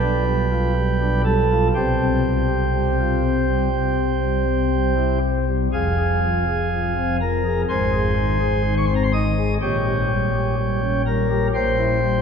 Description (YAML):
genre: classical, chorale-style piece for pipe organ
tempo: 61 BPM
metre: 4/4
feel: rubato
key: unclear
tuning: A4 = 440 Hz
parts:
  - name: pipe organ, flutes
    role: solo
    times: 0.0-12.2 s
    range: F1 to Eb6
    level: -18 LUFS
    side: equal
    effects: none
room: wet cathedral reverb, RT60 4.7 s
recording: heard from further back in the room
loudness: -18 LUFS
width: side -6 dB against mid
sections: 0.0-12.2 A section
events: none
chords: 0.0 G7/B; 1.7 Csus4; 3.7 C; 5.7 Fm; 7.7 Ab; 9.6 Gdim/Bb; 11.5 C7/Bb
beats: 0.75 | 1.75 2.74 3.72 4.72 | 5.72 6.71 7.68 8.64 | 9.61 10.57 11.54